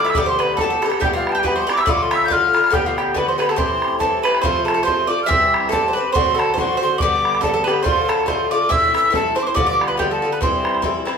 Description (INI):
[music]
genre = celtic folk, Celtic polka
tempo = 140 BPM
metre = 2/4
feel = swing 56% on 8ths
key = C major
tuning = A4 = 440 Hz
[part]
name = mellow hollow mid whistle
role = melody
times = 0.0-11.0 s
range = F5 to G6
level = -20 LUFS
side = equal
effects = none
[part]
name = mandolin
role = second line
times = 0.0-11.0 s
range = F4 to F5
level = -22 LUFS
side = right 4 dB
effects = none
[part]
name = Irish bouzouki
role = accompaniment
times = 0.0-11.2 s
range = G2 to G4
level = -22 LUFS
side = left 5 dB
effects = none
[part]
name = bodhran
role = percussion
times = 0.1-11.2 s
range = none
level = -24 LUFS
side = right 2 dB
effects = none
[sound]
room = wet large studio reverb, RT60 1.0 s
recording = band playing live in one room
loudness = -15 LUFS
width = side -6 dB against mid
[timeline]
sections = 0.0-4.4 A section; 4.4-11.2 B section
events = none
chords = 0.2 Gadd9; 1.0 Em; 1.9 Dm; 2.7 Gadd9; 3.6 C6; 4.4 F; 5.3 C; 6.1 D7; 7.0 G; 7.9 Dm; 8.7 Am; 9.6 G7; 10.4 C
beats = | 0.15 0.58 | 1.01 1.44 | 1.86 2.29 | 2.72 3.15 | 3.58 4.00 | 4.43 4.86 | 5.29 5.71 | 6.14 6.57 | 7.00 7.42 | 7.85 8.28 | 8.70 9.13 | 9.56 9.98 | 10.41 10.83